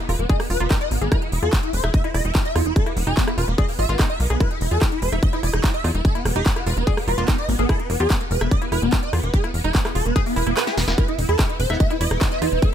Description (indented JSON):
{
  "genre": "psychedelic trance",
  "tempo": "146 BPM",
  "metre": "4/4",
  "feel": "straight",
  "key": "E major",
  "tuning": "A4 = 441 Hz",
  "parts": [
    { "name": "swarming rave lead", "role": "melody", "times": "0.0-12.7 s", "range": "B3 to E5", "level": "-25 LUFS", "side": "equal", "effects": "chorus, phaser, sidechain pumping, tape echo" },
    { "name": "woody wave-folded pluck", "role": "riff", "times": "0.0-12.5 s", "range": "D#4 to E5", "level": "-30 LUFS", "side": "moving between left 4 dB and right 5 dB", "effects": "chorus, auto-pan, cassette tape, sidechain pumping, digital delay" },
    { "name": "plucky analog bass", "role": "bass", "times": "0.1-12.6 s", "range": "E1 to E2", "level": "-22 LUFS", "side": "equal", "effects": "none" },
    { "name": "big-room dance drum kit", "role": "drums", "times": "0.1-12.7 s", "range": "handclaps, hi-hat, ride cymbal, rim click, snare drum", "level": "-28 LUFS", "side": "equal", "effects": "none" },
    { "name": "electronic kick drum", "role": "drums", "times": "0.3-12.7 s", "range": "none", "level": "-20 LUFS", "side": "equal", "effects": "distortion" },
    { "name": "swell", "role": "sound effects", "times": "10.3-11.0 s", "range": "none", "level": "-31 LUFS", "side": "right 1 dB", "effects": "none" },
    { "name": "overtone-sweeping drone", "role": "sustained chords", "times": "11.8-12.7 s", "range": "B3", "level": "-29 LUFS", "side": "right 6 dB", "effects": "chorus, built-in reverb, phaser, sidechain pumping" },
    { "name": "metallic wobble bass", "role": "second line", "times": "11.7-12.4 s", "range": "G#3 to B3", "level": "-37 LUFS", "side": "right 5 dB", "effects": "none" }
  ],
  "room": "digital ambience",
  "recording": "none",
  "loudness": "-18 LUFS",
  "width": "side -9 dB against mid",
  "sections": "0.0-12.7 A section",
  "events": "swell 10.3-11.0; kick drops out 10.6-11.0; drum fill 10.7-11.0",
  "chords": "0.0 E5",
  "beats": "0.29 0.71 | 1.12 1.53 1.94 2.35 | 2.76 3.17 3.58 3.99 | 4.41 4.82 5.23 5.64 | 6.05 6.46 6.87 7.28 | 7.69 8.10 8.52 8.93 | 9.34 9.75 10.16 10.57 | 10.98 11.39 11.80 12.21 | 12.62"
}